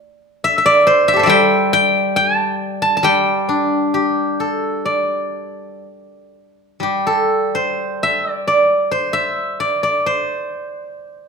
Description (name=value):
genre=chinese traditional, Chinese solo plucked strings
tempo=60-70 BPM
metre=4/4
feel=rubato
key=G zhi mode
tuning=A4 = 440 Hz
part: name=steel-string zither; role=solo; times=0.4-11.3 s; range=G3 to A5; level=-14 LUFS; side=equal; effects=none
room=moderate recital hall reverb, RT60 1.4 s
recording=minimal, uncompressed stereo recording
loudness=-14 LUFS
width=side -5 dB against mid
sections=0.0-6.8 A section; 6.8-11.3 B section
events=none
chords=none